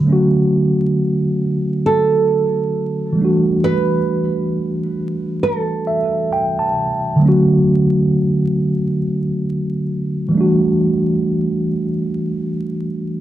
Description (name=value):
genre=hip hop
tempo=67 BPM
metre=4/4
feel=swing 61% on 16ths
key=D major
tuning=A4 = 441 Hz
part: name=mellow tine electric piano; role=accompaniment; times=0.0-13.2 s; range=D3 to A5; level=-16 LUFS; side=equal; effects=medium stereo tremolo, cassette tape
part: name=nylon-string guitar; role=melody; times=1.9-6.7 s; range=A4 to B4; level=-19 LUFS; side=right 5 dB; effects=analog delay
room=wet small room reverb, RT60 0.5 s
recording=dark, warm production, vinyl crackle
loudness=-15 LUFS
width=side -12 dB against mid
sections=0.0-13.2 A section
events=none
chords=0.0 Dmaj7; 3.2 Em11; 7.2 Dmaj7; 10.3 Em11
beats=| 0.04 0.94 1.83 2.73 | 3.62 4.52 5.41 6.31 | 7.21 8.10 9.00 9.89 | 10.79 11.68 12.58